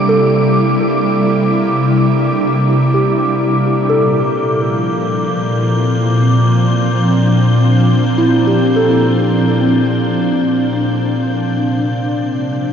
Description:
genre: ambient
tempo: 63 BPM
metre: 4/4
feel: straight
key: Bb lydian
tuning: A4 = 442 Hz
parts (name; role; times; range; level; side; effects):
- ethereal airy pad; sustained chords; 0.0-12.7 s; Bb2 to E4; -13 LUFS; equal; ensemble chorus, built-in reverb
- soft synth bell; arpeggios; 0.0-12.7 s; C4 to A4; -19 LUFS; right 1 dB; chorus, phaser, ping-pong delay
- overtone-sweeping drone; drone; 0.0-12.7 s; Bb3 to D5; -22 LUFS; left 1 dB; chorus, built-in reverb
- wind-like tuned noise texture; texture; 0.0-12.7 s; D6 to G6; -27 LUFS; equal; built-in reverb
room: wet lush hall reverb, RT60 2.6 s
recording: dark, warm production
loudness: -12 LUFS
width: side -8 dB against mid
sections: 0.0-12.7 A section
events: fade-out 9.0-12.7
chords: 0.0 Cadd9; 3.9 Bbmaj7; 11.5 Csus2

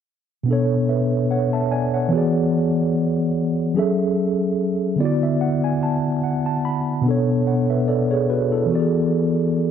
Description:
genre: R&B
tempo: 73 BPM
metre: 4/4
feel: swing 55% on 16ths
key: B dorian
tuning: A4 = 440 Hz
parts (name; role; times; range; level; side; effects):
- mellow tine electric piano; solo; 0.4-9.7 s; B2 to B5; -18 LUFS; equal; medium stereo tremolo
room: light reverb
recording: dark, warm production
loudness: -18 LUFS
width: side -8 dB against mid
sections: 0.5-9.7 A section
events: tine electric piano fill 4.6-7.0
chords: 0.5 Bm9; 2.1 E9; 3.8 F#m9; 5.0 D6; 7.0 Bm9; 8.7 E9

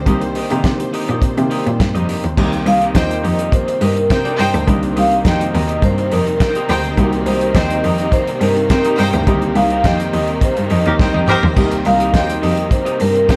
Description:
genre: disco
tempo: 104 BPM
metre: 4/4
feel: straight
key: C minor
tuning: A4 = 440 Hz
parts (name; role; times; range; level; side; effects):
- dark concert grand piano; accompaniment; 0.0-13.4 s; D3 to G4; -26 LUFS; equal; none
- warm symphonic string section; sustained chords; 0.0-13.4 s; C3 to D5; -27 LUFS; equal; none
- rich cello; bass; 0.0-13.4 s; C2 to C3; -21 LUFS; equal; none
- electric guitar through a small old amp; accompaniment; 0.1-13.3 s; Eb4 to Eb5; -29 LUFS; equal; none
- warm soul drum kit; drums; 0.1-13.4 s; crash cymbal, hi-hat, kick drum, snare drum, splash cymbal, toms; -21 LUFS; equal; none
- vibraphone with soft mallets; melody; 2.7-13.4 s; Bb4 to F5; -21 LUFS; equal; none
- clear studio string section; second line; 3.0-13.4 s; Eb4 to G5; -25 LUFS; equal; none
- bright horn section; stabs; 10.9-11.5 s; Eb4 to Bb4; -24 LUFS; equal; none
room: light reverb, studio ambience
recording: none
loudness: -16 LUFS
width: mono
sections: 0.0-2.4 A section; 2.4-13.4 B section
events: band accent 9.3-11.6; drum fill 11.0-11.6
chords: 0.0 Cm7

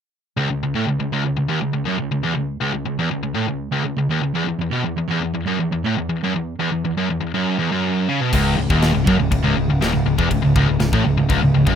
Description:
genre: heavy metal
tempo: 121 BPM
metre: 4/4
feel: straight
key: C# minor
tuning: A4 = 441 Hz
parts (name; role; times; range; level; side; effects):
- sludgy distorted guitar; riff; 0.4-11.8 s; C#2 to C#3; -21 LUFS; right 7 dB; overdrive
- tight distorted guitar; riff; 0.4-11.8 s; C#2 to C#3; -22 LUFS; left 9 dB; distortion
- fuzz guitar; riff; 8.3-11.8 s; C#2 to A2; -21 LUFS; left 2 dB; distortion
- growling picked electric bass; bass; 8.3-11.8 s; C#1 to A1; -22 LUFS; left 1 dB; overdrive
- tight metal drum kit; drums; 8.3-11.8 s; crash cymbal, kick drum, snare drum; -24 LUFS; left 1 dB; none
room: little or no reverb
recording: rough home demo mix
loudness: -18 LUFS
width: side -8 dB against mid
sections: 0.4-8.3 A section; 8.3-11.8 B section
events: none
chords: 0.4 N.C.; 4.3 E5; 8.3 C#m

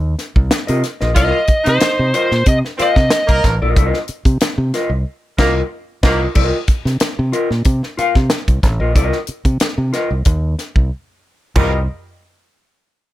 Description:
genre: funk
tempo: 92 BPM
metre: 4/4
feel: straight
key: C dorian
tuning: A4 = 440 Hz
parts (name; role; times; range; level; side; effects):
- fingered electric bass; bass; 0.0-11.9 s; A1 to C3; -17 LUFS; equal; none
- tight funk drum kit; drums; 0.2-11.7 s; crash cymbal, hi-hat, kick drum, snare drum, toms; -16 LUFS; equal; none
- mellow electric guitar; accompaniment; 0.7-11.8 s; F4 to F5; -19 LUFS; left 2 dB; wide subtle chorus
- warm horn section; second line; 1.1-6.2, 11.6-11.8 s; G3 to F5; -21 LUFS; right 1 dB; none
- biting lead guitar; melody; 1.2-3.4 s; C5 to Eb5; -17 LUFS; equal; overdrive
room: little or no reverb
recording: none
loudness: -14 LUFS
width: side -15 dB against mid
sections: 0.0-6.4 A section; 6.4-11.6 B section; 11.6-13.1 C section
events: band accent 5.1-6.4; break 10.9-11.6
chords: 0.0 Cm7

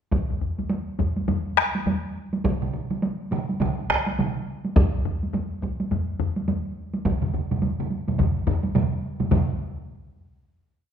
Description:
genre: japanese traditional, taiko drum ensemble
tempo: 105 BPM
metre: 4/4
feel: swing 60% on 16ths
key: none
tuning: none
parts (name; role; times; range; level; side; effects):
- solo taiko drums; percussion; 0.1-9.6 s; none; -28 LUFS; right 2 dB; none
- taiko ensemble; percussion; 0.1-9.8 s; none; -26 LUFS; left 4 dB; none
- taiko ensemble; percussion; 0.1-9.6 s; none; -26 LUFS; equal; none
- taiko ensemble; percussion; 2.5-9.8 s; none; -27 LUFS; right 4 dB; none
room: wet recital hall reverb, RT60 1.3 s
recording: minimal, uncompressed stereo recording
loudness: -23 LUFS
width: side -8 dB against mid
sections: 0.1-9.3 A section; 9.3-10.9 final hit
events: none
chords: none

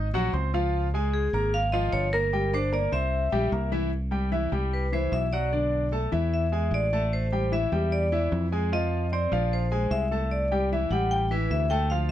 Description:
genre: Afro-Cuban jazz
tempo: 150 BPM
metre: 4/4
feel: straight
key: C major from 3.9 s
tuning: A4 = 440 Hz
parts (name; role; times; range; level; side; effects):
- vibraphone with medium hard mallets; melody; 0.0-12.1 s; Ab4 to G5; -29 LUFS; left 1 dB; none
- clear concert grand piano; accompaniment; 0.0-12.1 s; D3 to D6; -29 LUFS; left 1 dB; none
- fingered electric bass; bass; 0.0-12.1 s; G1 to F2; -27 LUFS; equal; none
room: little or no reverb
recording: close, detailed microphones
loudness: -24 LUFS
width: side -12 dB against mid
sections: 0.0-3.9 A section; 3.9-12.1 B section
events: vibraphone solo 3.9-12.1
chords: 0.0 Ab7; 0.7 Db6; 2.3 Gm; 3.1 C7; 3.9 Cmaj7; 5.5 Bm7; 6.3 Eadd11; 7.1 Am7; 8.7 F5; 9.5 Bbsus2; 10.3 C69; 11.1 A7sus4

